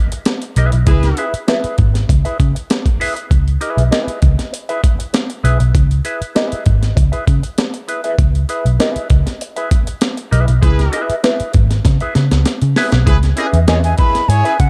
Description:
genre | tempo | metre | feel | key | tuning
funk | 98 BPM | 4/4 | straight | C# minor | A4 = 440 Hz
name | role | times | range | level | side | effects
mellow electric guitar | accompaniment | 0.1-14.6 s | C#4 to E5 | -24 LUFS | equal | wah
breakbeat sampler-style drum kit | drums | 0.1-14.7 s | hi-hat, kick drum, snare drum | -18 LUFS | equal | none
vintage muted picked electric bass | bass | 0.6-14.7 s | G#1 to C#3 | -16 LUFS | equal | none
clear horn section | second line | 0.9-1.3, 10.6-14.5 s | C#4 to C#5 | -25 LUFS | equal | none
breathy concert flute | melody | 13.7-14.7 s | F#5 to B5 | -19 LUFS | equal | none
room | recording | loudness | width
digital ambience | dark, warm production | -15 LUFS | mono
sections
0.0-13.1 A section; 13.1-14.7 B section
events
band accent 0.9-3.3, 10.6-13.1; drum fill 11.8-13.1; flute solo 13.1-14.7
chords
0.0 C#m7

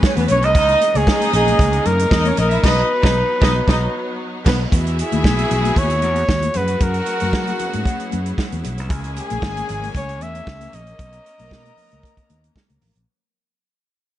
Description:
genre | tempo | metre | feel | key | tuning
disco | 115 BPM | 4/4 | straight | unclear | A4 = 439 Hz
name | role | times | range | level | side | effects
dark studio string section | second line | 0.0-12.8 s | B3 to A#5 | -24 LUFS | equal | none
clear studio string section | sustained chords | 0.0-13.1 s | C#3 to B4 | -28 LUFS | equal | none
warm soul drum kit | drums | 0.0-13.1 s | crash cymbal, hi-hat, kick drum, snare drum | -19 LUFS | equal | none
congas | percussion | 0.0-12.9 s | none | -29 LUFS | left 9 dB | none
fingered electric bass | bass | 0.2-13.0 s | G#1 to F#3 | -21 LUFS | equal | none
warm flugelhorn | melody | 0.3-12.6 s | G#4 to E5 | -20 LUFS | right 1 dB | none
room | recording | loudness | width
light reverb, small room ambience | nothing above 10.3 kHz | -15 LUFS | side -13 dB against mid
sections
0.0-4.7 A section; 4.7-13.1 B section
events
band accent 2.6-4.7; fade-out 4.7-13.1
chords
0.0 F#7sus4; 0.5 C#m69; 2.6 B; 4.7 Emaj7; 6.6 F#7sus4; 8.9 C#m6; 11.0 Bmaj7

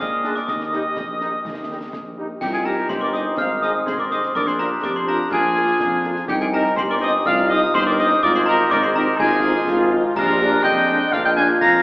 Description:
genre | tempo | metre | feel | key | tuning
military-style march for wind band | 124 BPM | 2/4 | straight | unclear | A4 = 439 Hz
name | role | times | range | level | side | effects
warm cornet | melody | 0.0-11.8 s | G4 to Bb5 | -23 LUFS | equal | none
glockenspiel with brass mallets | second line | 0.0-11.8 s | G5 to Bb6 | -23 LUFS | left 1 dB | none
piccolo | second line | 0.0-11.8 s | G5 to Bb6 | -25 LUFS | equal | none
warm woodwind section | second line | 0.0-11.8 s | Eb4 to F5 | -27 LUFS | equal | none
mellow tuba | bass | 0.0-11.8 s | G1 to Bb2 | -26 LUFS | equal | none
concert snare drum, concert bass drum and clash cymbals | drums | 0.0-11.8 s | none | -33 LUFS | equal | none
mellow French horn section | accompaniment | 0.2-11.5 s | F3 to Ab4 | -29 LUFS | left 1 dB | none
clear trombone section | sustained chords | 0.2-11.8 s | F3 to Eb4 | -28 LUFS | equal | none
dark euphonium | second line | 2.4-11.8 s | C4 to G4 | -25 LUFS | equal | none
room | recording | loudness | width
wet recital hall reverb, RT60 1.8 s | recorded in a church or concert hall, AM radio sound | -16 LUFS | side -25 dB against mid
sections
0.0-2.4 A section; 2.4-11.8 A section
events
none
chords
0.0 Bb7; 0.5 Eb; 2.4 Cm; 3.4 Ab6; 4.4 Bb7; 6.3 Cm; 8.2 Fm7/Ab; 10.2 Bb7

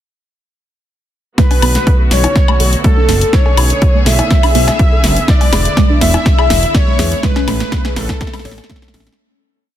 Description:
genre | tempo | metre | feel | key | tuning
progressive house | 123 BPM | 4/4 | straight | B dorian | A4 = 444 Hz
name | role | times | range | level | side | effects
soft octave-layered synth lead | melody | 1.4-9.1 s | A4 to E5 | -19 LUFS | left 2 dB | chorus, phaser, cassette tape, dub echo
soft supersaw | second line | 1.4-9.1 s | A4 to E5 | -22 LUFS | equal | cassette tape, sidechain pumping, ping-pong delay
clear symphonic string section | sustained chords | 1.4-9.2 s | C#3 to G#4 | -24 LUFS | equal | sidechain pumping, low-pass filter
soft round pluck | arpeggios | 1.4-9.0 s | G#3 to C#5 | -22 LUFS | right 2 dB | analog chorus, sidechain pumping, ping-pong delay
electronic kick drum | drums | 1.4-8.8 s | none | -13 LUFS | equal | small room ambience
house drum kit | drums | 1.4-9.2 s | hi-hat, snare drum, woodblock | -19 LUFS | left 1 dB | small room ambience, sidechain pumping on hats, sidechain pumping on perc
congas and cowbell | percussion | 1.4-8.7 s | none | -23 LUFS | left 4 dB | sidechain pumping on perc, small room ambience
fat analog bass | bass | 1.6-9.1 s | E1 to E2 | -15 LUFS | equal | sidechain pumping
room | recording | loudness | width
little or no reverb | dense, heavily limited modern master | -10 LUFS | side -11 dB against mid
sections
1.4-9.2 build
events
build-up 1.4-9.2; drum fill 1.4-9.2; filter sweep on synth pluck 1.4-9.2; fade-out 6.6-9.2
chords
1.4 Bm7; 5.3 E7; 7.2 Amaj7

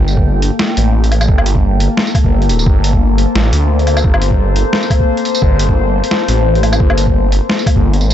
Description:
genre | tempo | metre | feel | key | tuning
half-time drum and bass | 174 BPM | 4/4 | swing 55% on 16ths, half-time | G minor | A4 = 437 Hz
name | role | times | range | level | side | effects
deep dark ambient pad | sustained chords | 0.0-8.1 s | Bb3 to G5 | -17 LUFS | left 4 dB | chorus, built-in reverb, sidechain pumping
phased detuned saw bass | bass | 0.0-8.1 s | D1 to D2 | -13 LUFS | equal | phaser
boom bap sampler-style drum kit | drums | 0.1-8.1 s | hi-hat, snare drum, tambourine, woodblock | -18 LUFS | equal | overdrive
electronic kick drum | drums | 0.2-7.8 s | none | -12 LUFS | equal | overdrive
room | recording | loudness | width
little or no reverb | dry, gritty hardware recording, nothing above 7.9 kHz | -10 LUFS | side -11 dB against mid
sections
0.0-8.1 A section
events
none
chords
0.0 Gmadd9

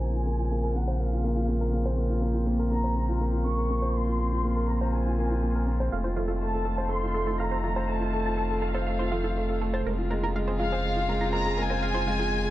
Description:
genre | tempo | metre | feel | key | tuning
electronica | 122 BPM | 4/4 | straight | Bb minor | A4 = 440 Hz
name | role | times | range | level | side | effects
rich studio violin section | melody | 0.0-12.5 s | F5 to Db6 | -33 LUFS | left 1 dB | tape echo
dark string quartet | sustained chords | 0.0-12.5 s | Db3 to F4 | -34 LUFS | left 1 dB | none
warm grand piano | riff | 0.0-12.5 s | Ab3 to C5 | -30 LUFS | right 1 dB | tape echo
warm sub bass | bass | 0.0-12.5 s | F1 to Bb1 | -28 LUFS | equal | none
analog pluck | arpeggios | 5.9-12.3 s | F4 to Bb5 | -35 LUFS | right 4 dB | chorus, tape echo
room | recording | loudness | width
light reverb, small room ambience | dark, warm production, low-pass filter | -25 LUFS | side -15 dB against mid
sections
0.0-12.5 A section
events
filter sweep 0.0-12.5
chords
0.0 Bbmadd9; 5.9 F7; 9.9 Dbmaj7/F

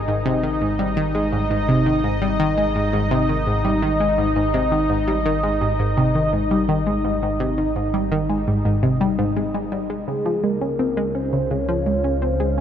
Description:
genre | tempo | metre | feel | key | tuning
ambient, sequencer-driven space music | 84 BPM | 4/4 | straight | Ab major | A4 = 439 Hz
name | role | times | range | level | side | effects
lush unison pad | sustained chords | 0.0-12.6 s | Db3 to Ab5 | -23 LUFS | left 1 dB | chorus
warm sub bass | bass | 0.0-12.6 s | Ab1 to Db2 | -28 LUFS | equal | none
analog pluck | riff | 0.1-12.6 s | Ab2 to Db4 | -21 LUFS | equal | chorus, phaser, tape echo
soft octave-layered synth lead | melody | 10.1-12.6 s | Ab4 to Db5 | -24 LUFS | equal | chorus, phaser, cassette tape, tape echo
room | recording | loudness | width
moderate huge ambient reverb, RT60 7.6 s | none | -18 LUFS | side -9 dB against mid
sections
0.0-12.6 A section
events
none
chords
0.0 Ab5; 10.1 Db

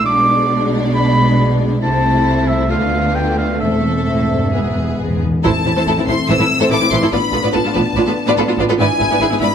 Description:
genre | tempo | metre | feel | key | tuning
classical, dramatic, fast romantic movement for symphony orchestra | 128-146 BPM | 4/4 | rubato | A minor | A4 = 440 Hz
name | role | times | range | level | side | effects
rich symphonic violin section | melody | 0.0-9.5 s | B4 to E6 | -22 LUFS | left 3 dB | none
clear oboe | second line | 0.0-5.0 s | E5 to D6 | -20 LUFS | right 2 dB | none
mellow hollow silver concert flute | second line | 0.0-5.0 s | E5 to D6 | -23 LUFS | left 1 dB | none
clear symphonic double bass section | bass | 0.0-9.5 s | E1 to D2 | -22 LUFS | right 2 dB | none
rich symphonic cello section | bass | 0.0-9.5 s | E2 to D3 | -22 LUFS | right 2 dB | none
rich studio violin section | second line | 0.1-9.5 s | C4 to D5 | -22 LUFS | left 3 dB | none
rich symphonic viola section | accompaniment | 0.1-9.4 s | E3 to F4 | -20 LUFS | right 2 dB | none
mellow French horn section | sustained chords | 0.1-9.5 s | G#3 to E4 | -22 LUFS | left 4 dB | none
timpani | percussion | 3.6-5.4 s | E2 | -23 LUFS | left 2 dB | none
room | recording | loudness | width
moderate recital hall reverb, RT60 1.5 s | none | -13 LUFS | side -8 dB against mid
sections
0.0-5.5 A section; 5.5-9.5 B section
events
timpani fill 4.5-5.5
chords
0.1 G#dim/B; 1.8 Am/C; 2.7 Bm7b5/D; 3.6 Am/E; 4.5 E; 5.5 Am; 7.1 Bm7b5/A; 8.8 E7/G#

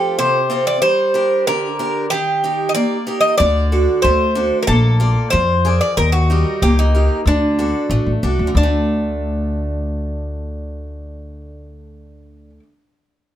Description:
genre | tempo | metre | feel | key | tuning
greek folk, Greek bouzouki band | 93 BPM | 2/4 | straight | unclear | A4 = 441 Hz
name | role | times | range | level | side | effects
Greek bouzouki | melody | 0.0-12.6 s | D4 to Eb5 | -18 LUFS | equal | plate reverb
picked acoustic archtop guitar | accompaniment | 0.0-12.6 s | C3 to D5 | -21 LUFS | right 1 dB | none
upright bass | bass | 3.4-12.6 s | A1 to F2 | -17 LUFS | left 1 dB | none
room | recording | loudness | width
moderate small room ambience, RT60 0.5 s | none | -14 LUFS | side -11 dB against mid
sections
0.0-8.6 A section; 8.6-11.1 B section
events
none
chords
0.0 F; 0.8 Gm; 2.1 Eb; 3.4 D; 4.7 Bb7; 6.0 Eb; 7.3 D; 8.6 D5

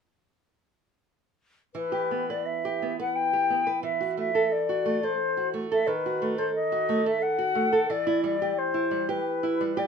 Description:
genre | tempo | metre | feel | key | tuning
romantic duo for flute and classical guitar | 88 BPM | 3/4 | rubato | E minor | A4 = 443 Hz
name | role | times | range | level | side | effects
concert flute | melody | 1.7-9.9 s | B4 to G5 | -27 LUFS | left 4 dB | none
nylon-string guitar | accompaniment | 1.7-9.9 s | D#3 to B4 | -27 LUFS | right 4 dB | none
room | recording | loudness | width
moderate studio reverb, RT60 0.8 s | minimal, uncompressed stereo recording | -24 LUFS | side -6 dB against mid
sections
1.8-9.9 A section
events
none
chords
1.8 Em; 3.9 F#m7b5/E; 5.9 D#dim; 7.9 Em

